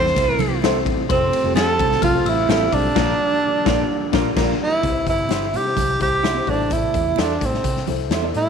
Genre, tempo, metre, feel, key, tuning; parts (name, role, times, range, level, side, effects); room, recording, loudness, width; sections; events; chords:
uptempo 1960s-style soul; 128 BPM; 4/4; straight; C mixolydian; A4 = 439 Hz
breathy tenor saxophone; melody; 0.0-8.5 s; C4 to C5; -20 LUFS; right 3 dB
glockenspiel with soft plastic mallets; second line; 0.0-3.0 s; C6 to C7; -31 LUFS; left 12 dB
dark upright piano; accompaniment; 0.0-8.5 s; A2 to D5; -26 LUFS; left 13 dB
percussive tonewheel organ; sustained chords; 0.0-4.8 s; E3 to G4; -28 LUFS; right 13 dB; slow rotary speaker, chorus vibrato
vintage muted fingered electric bass; bass; 0.0-8.5 s; F1 to C3; -26 LUFS; equal
raw garage drum kit; drums; 0.1-8.5 s; crash cymbal, hi-hat, kick drum, ride cymbal, snare drum; -24 LUFS; left 4 dB
congas; percussion; 0.2-8.3 s; -30 LUFS; right 13 dB
electric guitar through a small old amp; stabs; 0.6-8.3 s; C4 to F5; -28 LUFS; right 11 dB; spring reverb, slapback echo
light reverb; 1960s-style stereo with parts hard left and right; -17 LUFS; side -6 dB against mid
0.0-4.8 A section; 4.8-8.5 B section
band accent 3.0-4.8
0.0 Am; 1.1 Fadd9; 3.0 Bb; 4.8 C; 6.5 Am